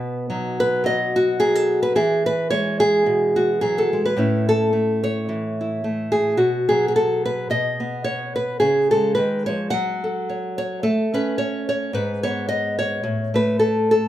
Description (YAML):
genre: folk, solo fingerstyle acoustic guitar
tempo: 108 BPM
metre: 4/4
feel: swing 56% on 8ths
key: B mixolydian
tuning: A4 = 440 Hz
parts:
  - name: nylon-string guitar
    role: solo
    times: 0.0-14.1 s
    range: G#2 to F#5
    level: -18 LUFS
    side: equal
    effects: none
room: moderate large studio reverb, RT60 0.9 s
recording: band playing live in one room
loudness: -18 LUFS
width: side -13 dB against mid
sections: 0.0-6.4 A section; 6.4-14.1 B section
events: none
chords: 0.0 B; 2.0 E; 4.2 A; 6.4 B5; 7.5 N.C.; 8.6 C#; 9.7 F#m; 10.8 A; 11.9 G#madd11; 13.0 A5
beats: 0.30 0.86 1.41 | 1.96 2.51 3.07 3.62 | 4.17 4.72 5.28 5.83 | 6.38 6.94 7.49 8.04 | 8.60 9.15 9.70 10.26 | 10.81 11.37 11.92 12.47 | 13.03 13.58